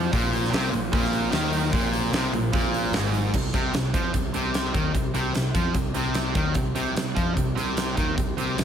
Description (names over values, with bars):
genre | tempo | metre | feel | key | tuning
hard rock | 149 BPM | 4/4 | straight | C minor | A4 = 435 Hz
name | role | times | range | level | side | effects
percussive tonewheel organ | sustained chords | 0.0-3.3 s | Bb3 to D5 | -36 LUFS | equal | none
sludgy distorted guitar | riff | 0.0-8.6 s | Ab2 to F3 | -27 LUFS | left 7 dB | overdrive
tight distorted guitar | riff | 0.0-8.6 s | Ab2 to F3 | -28 LUFS | right 10 dB | distortion
picked electric bass | bass | 0.0-8.6 s | Ab1 to F2 | -30 LUFS | equal | none
huge arena drum kit | drums | 0.1-8.6 s | crash cymbal, hi-hat, kick drum, snare drum | -27 LUFS | equal | none
room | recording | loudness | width
light reverb, studio reverb | none | -22 LUFS | side -8 dB against mid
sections
0.0-3.3 A section; 3.3-8.6 B section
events
none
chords
0.1 Bb5; 3.3 Cm